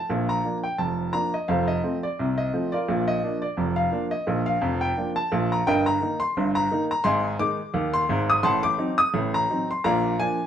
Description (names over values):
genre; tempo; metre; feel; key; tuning
ragtime piano; 86 BPM; 2/4; swing 56% on 16ths; Bb major, Eb major from 5.7 s; A4 = 440 Hz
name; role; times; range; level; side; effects
warm upright piano; solo; 0.0-10.5 s; F1 to Eb6; -22 LUFS; equal; none
room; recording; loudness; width
wet studio reverb, RT60 0.9 s; band playing live in one room; -22 LUFS; side -9 dB against mid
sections
0.0-10.5 A section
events
none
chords
0.1 Bb; 1.5 F; 2.9 Bb; 5.7 Eb/G; 7.1 Ab5; 8.4 Adim7; 9.8 Bb